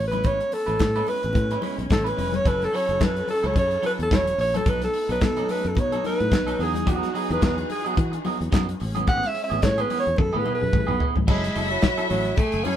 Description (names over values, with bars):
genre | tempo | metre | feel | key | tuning
disco | 109 BPM | 4/4 | swing 56% on 16ths | F# dorian | A4 = 436 Hz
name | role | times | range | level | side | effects
breathy alto saxophone | melody | 0.0-12.8 s | F#3 to F#5 | -25 LUFS | equal | none
warm studio string section | sustained chords | 0.0-11.3 s | E3 to B4 | -34 LUFS | equal | none
fingered electric bass | bass | 0.0-12.8 s | E1 to E3 | -28 LUFS | equal | none
clean electric guitar | accompaniment | 0.1-12.8 s | E3 to B4 | -30 LUFS | right 3 dB | none
damped 70s drum kit | drums | 0.1-12.8 s | crash cymbal, handclaps, hi-hat, kick drum, snare drum, toms | -24 LUFS | equal | none
congas | percussion | 0.1-12.8 s | none | -34 LUFS | left 8 dB | none
clear studio violin section | second line | 11.3-12.8 s | E4 to G#5 | -27 LUFS | left 2 dB | none
room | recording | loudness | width
light reverb | band playing live in one room | -20 LUFS | side -10 dB against mid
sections
0.0-11.3 A section; 11.3-12.8 B section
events
alto saxophone solo 0.0-11.3; drum fill 10.2-11.3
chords
0.0 Amaj9; 2.5 F#m7; 4.7 B9; 6.6 Emaj9; 8.8 Amaj9; 10.2 F#m11; 11.3 F#m7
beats
| 0.24 0.80 1.35 1.90 | 2.45 3.01 3.56 4.11 | 4.66 5.21 5.77 6.32 | 6.87 7.42 7.97 8.53 | 9.08 9.63 10.18 10.73 | 11.28 11.83 12.38